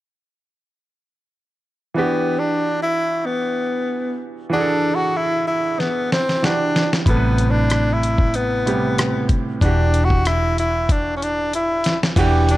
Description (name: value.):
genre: R&B, neo-soul.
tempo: 94 BPM.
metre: 4/4.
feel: swing 53% on 16ths.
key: E minor.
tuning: A4 = 442 Hz.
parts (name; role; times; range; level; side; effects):
bright grand piano; accompaniment; 1.9-12.6 s; A2 to B4; -23 LUFS; right 3 dB; none.
breathy tenor saxophone; melody; 2.0-12.6 s; B3 to F#4; -20 LUFS; left 1 dB; none.
dusty soul sampler-style drum kit; drums; 5.8-12.6 s; crash cymbal, hi-hat, kick drum, rim click, snare drum; -20 LUFS; equal; none.
vintage muted fingered electric bass; bass; 7.1-12.6 s; E1 to A1; -20 LUFS; equal; none.
room: light reverb.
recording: dark, warm production.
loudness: -17 LUFS.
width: side -16 dB against mid.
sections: 2.0-12.2 A section.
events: drum fill 5.8-7.1, 10.9-12.2.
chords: 2.0 Em9; 7.1 Am9; 9.6 Em9.